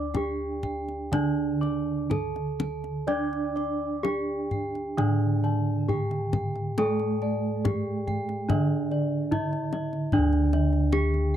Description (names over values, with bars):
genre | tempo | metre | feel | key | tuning
Javanese gamelan | 62-75 BPM | 4/4 | straight | unclear | A4 = 440 Hz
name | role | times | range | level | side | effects
gamelan-type bronze metallophone | melody | 0.0-11.4 s | D4 to D5 | -30 LUFS | right 3 dB | none
gamelan-type bronze metallophone | accompaniment | 0.0-11.4 s | D3 to D4 | -32 LUFS | right 4 dB | none
gamelan-type bossed gongs | arpeggios | 0.0-11.4 s | D5 to D6 | -38 LUFS | left 6 dB | tape echo
gamelan-type bronze metallophone | arpeggios | 0.0-11.4 s | D5 to D6 | -39 LUFS | right 1 dB | none
gamelan-type bossed gongs | bass | 0.0-11.4 s | D2 to D5 | -29 LUFS | left 1 dB | none
kendang | percussion | 0.1-11.2 s | none | -31 LUFS | left 3 dB | none
room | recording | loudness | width
little or no reverb | dry, close 1970s-style studio recording | -24 LUFS | side -10 dB against mid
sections
0.0-10.1 A section; 10.1-11.4 B section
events
none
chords
none